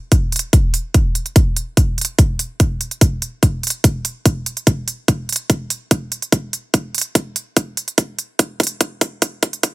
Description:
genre	heavy wobble dubstep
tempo	145 BPM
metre	4/4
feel	half-time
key	none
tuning	none
part	electronic hi-hat	drums	0.1-9.7 s	none	-19 LUFS	right 3 dB	none
part	electronic kick drum	drums	0.1-9.7 s	none	-14 LUFS	equal	none
room	little or no reverb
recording	dense, heavily limited modern master, high-pass filter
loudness	-16 LUFS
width	side -19 dB against mid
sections	0.0-9.7 A section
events	build-up 0.0-9.7; filter sweep 0.0-9.7; drum fill 5.1-9.7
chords	none

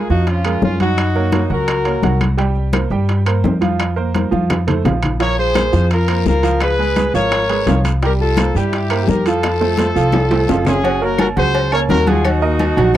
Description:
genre	latin, salsa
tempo	170 BPM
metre	4/4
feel	straight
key	unclear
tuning	A4 = 440 Hz
part	clear horn section	melody	0.0-2.2, 5.2-13.0 s	Db4 to Db5	-18 LUFS	left 2 dB	none
part	bright baby grand piano	accompaniment	0.0-12.9 s	F3 to G5	-21 LUFS	right 7 dB	none
part	upright bass	bass	0.1-13.0 s	Gb1 to G2	-18 LUFS	equal	none
part	bongos and cowbell	percussion	0.1-13.0 s	none	-25 LUFS	left 7 dB	none
part	congas	percussion	0.1-13.0 s	none	-22 LUFS	left 2 dB	none
part	timbales and agogo bells	percussion	0.3-12.9 s	none	-24 LUFS	right 4 dB	none
part	claves	percussion	0.4-13.0 s	none	-29 LUFS	left 13 dB	none
part	guiro	percussion	5.2-10.8 s	none	-34 LUFS	left 17 dB	none
room	little or no reverb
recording	dry, close 1970s-style studio recording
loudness	-13 LUFS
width	side -12 dB against mid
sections	0.0-10.8 A section; 10.8-13.0 B section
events	drum fill 4.1-5.2, 9.4-10.8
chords	0.0 Bbm7; 1.0 Gb6; 2.4 C5; 3.8 Fsus4; 4.5 F; 5.2 Bbmadd9; 6.6 Db7; 8.0 C7; 9.4 F; 10.8 Gbadd9; 12.2 Ebm

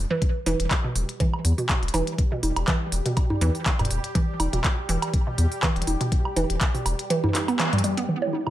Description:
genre	minimal techno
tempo	122 BPM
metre	4/4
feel	swing 55% on 16ths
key	E minor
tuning	A4 = 440 Hz
part	round analog bass	bass	0.0-8.5 s	E1 to E2	-24 LUFS	equal	sidechain pumping, high-pass filter
part	hollow square pluck	riff	0.1-8.5 s	B2 to B3	-28 LUFS	right 2 dB	chorus, cassette tape, sidechain pumping, tape echo
part	electronic kick drum	drums	0.2-6.7 s	none	-24 LUFS	equal	small room ambience
part	minimal click drum kit	drums	0.2-8.5 s	handclaps, hi-hat	-28 LUFS	equal	low-pass filter on hats, small room ambience, low-pass filter on snare
part	bubbling stepped-filter texture	texture	0.8-8.5 s	G3 to G4	-35 LUFS	equal	chorus, built-in reverb, sidechain pumping
part	electronic congas, woodblock, toms and bongos	percussion	0.5-8.5 s	none	-28 LUFS	right 2 dB	small room ambience, tape echo
part	airy breathy pad	texture	8.1-8.5 s	E4	-32 LUFS	left 1 dB	chorus, sidechain pumping
room	light reverb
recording	none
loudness	-22 LUFS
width	side -13 dB against mid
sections	0.0-8.1 A section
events	band accent 7.6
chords	0.0 Em

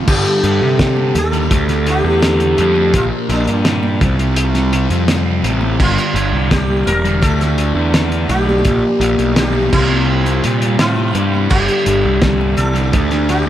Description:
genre	psychedelic rock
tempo	84 BPM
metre	4/4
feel	straight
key	G dorian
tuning	A4 = 440 Hz
part	sitar	melody	0.0-13.5 s	D4 to Bb4	-19 LUFS	equal	analog delay
part	fuzz guitar	riff	0.0-13.5 s	G2 to D4	-19 LUFS	left 1 dB	distortion, phaser
part	mellow French horn section	sustained chords	0.1-13.5 s	D4 to D5	-27 LUFS	right 6 dB	none
part	fuzz picked electric bass	bass	0.1-13.5 s	E1 to C3	-17 LUFS	equal	overdrive
part	cloth-damped thuddy drum kit	drums	0.1-13.5 s	crash cymbal, hi-hat, kick drum, snare drum	-18 LUFS	equal	none
part	congas	percussion	1.0-12.8 s	none	-29 LUFS	right 2 dB	none
room	light reverb, studio ambience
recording	none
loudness	-12 LUFS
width	side -12 dB against mid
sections	0.1-13.5 A section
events	none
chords	0.1 Gsus2; 1.5 Dsus2; 2.9 Bb; 4.0 Csus4; 5.8 G5; 7.2 Dsus2; 8.6 Bb; 9.7 Csus4; 11.5 Gsus2; 12.9 Dsus2

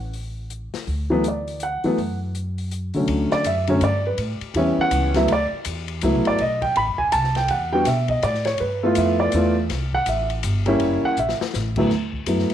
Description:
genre	jazz piano trio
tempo	163 BPM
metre	3/4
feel	swing 63% on 8ths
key	D major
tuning	A4 = 439 Hz
part	upright bass	bass	0.0-12.5 s	D#1 to B2	-26 LUFS	equal	none
part	open jazz drum kit	drums	0.1-12.5 s	crash cymbal, hi-hat, kick drum, ride cymbal, snare drum	-32 LUFS	left 7 dB	none
part	dark concert grand piano	melody	1.1-12.5 s	D2 to B5	-20 LUFS	equal	none
room	light reverb, studio reverb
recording	1960s-style stereo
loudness	-19 LUFS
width	side -10 dB against mid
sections	0.0-3.1 A section; 3.1-11.9 B section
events	drum fill 11.2-11.5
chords	0.0 N.C.; 0.9 D; 3.1 Dmaj9; 4.2 A7; 5.3 D69; 6.4 B7b9; 7.5 Em9; 8.6 G13; 9.7 C; 10.8 F#7b9; 11.5 A5; 11.9 D6

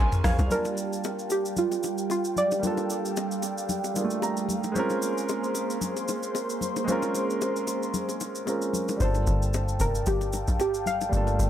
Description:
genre	amapiano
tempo	113 BPM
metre	4/4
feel	swing 55% on 16ths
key	G minor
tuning	A4 = 440 Hz
part	warm grand piano	accompaniment	0.0-11.5 s	G3 to C6	-30 LUFS	right 2 dB	none
part	warm analog pad	sustained chords	0.0-11.5 s	G3 to C6	-32 LUFS	right 1 dB	chorus
part	tight log drum bass	bass	0.0-0.5, 9.0-11.5 s	F1 to C2	-26 LUFS	equal	none
part	smooth R&B drum kit	drums	0.1-11.5 s	hi-hat, rim click, shaker, toms	-33 LUFS	equal	none
part	congas and bongos	percussion	0.2-11.4 s	none	-35 LUFS	left 6 dB	none
part	soft round pluck	melody	0.5-4.5, 9.0-11.5 s	F4 to F5	-29 LUFS	right 1 dB	chorus, tape echo
part	hollow-body short-scale fingered electric bass	bass	9.0-11.5 s	G1	-29 LUFS	equal	none
room	light reverb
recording	none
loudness	-25 LUFS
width	side -10 dB against mid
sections	0.5-11.5 A section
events	grand piano fill 0.0-0.5, 4.0-4.8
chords	0.0 Bbm9; 0.5 Gm9; 4.8 Bbm9; 9.0 Gm9

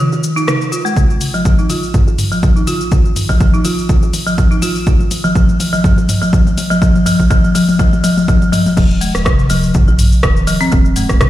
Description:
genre	afro house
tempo	123 BPM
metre	4/4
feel	swing 55% on 16ths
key	F minor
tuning	A4 = 445 Hz
part	folk marimba with hard mallets	arpeggios	0.0-11.3 s	C3 to F4	-15 LUFS	left 1 dB	sidechain pumping, low-pass filter, ping-pong delay
part	woody FM bass	bass	0.0-11.3 s	Eb1 to F2	-18 LUFS	equal	sidechain pumping, high-pass filter
part	house drum kit	drums	0.1-11.3 s	crash cymbal, hi-hat, rim click, shaker, toms	-19 LUFS	equal	none
part	electronic kick drum	drums	1.0-11.3 s	none	-13 LUFS	equal	none
room	light reverb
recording	played on a big sound system in a bare room, large studio reverb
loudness	-10 LUFS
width	side -14 dB against mid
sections	0.0-8.8 A section; 8.8-11.3 B section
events	build-up 0.0-8.8; drum fill 0.0-8.8; filter sweep on marimba 0.0-8.8; drop 8.8-11.3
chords	0.0 Eb5; 1.0 F5; 8.8 Eb5

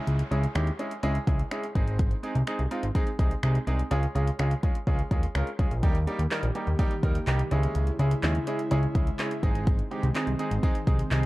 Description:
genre	dance-pop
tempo	125 BPM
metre	4/4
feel	straight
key	Ab major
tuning	A4 = 440 Hz
part	bright grand piano	accompaniment	0.0-11.2 s	G3 to Ab5	-32 LUFS	right 1 dB	sidechain pumping
part	downlifter	sound effects	0.0-2.0 s	none	-47 LUFS	equal	none
part	fat analog bass	bass	0.1-11.3 s	Ab1 to Eb2	-26 LUFS	equal	sidechain pumping
part	deep house drum kit	drums	0.1-11.3 s	finger snaps, handclaps, hi-hat, kick drum	-27 LUFS	equal	none
part	airy breathy pad	sustained chords	6.3-11.3 s	Db3 to G4	-34 LUFS	equal	chorus, sidechain pumping
room	little or no reverb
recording	cassette tape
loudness	-24 LUFS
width	side -19 dB against mid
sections	0.0-11.3 A section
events	grand piano fill 9.0-9.7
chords	0.0 Dbm; 1.8 Ab; 3.9 Db; 5.8 Eb; 7.5 Dbm; 9.4 Ab

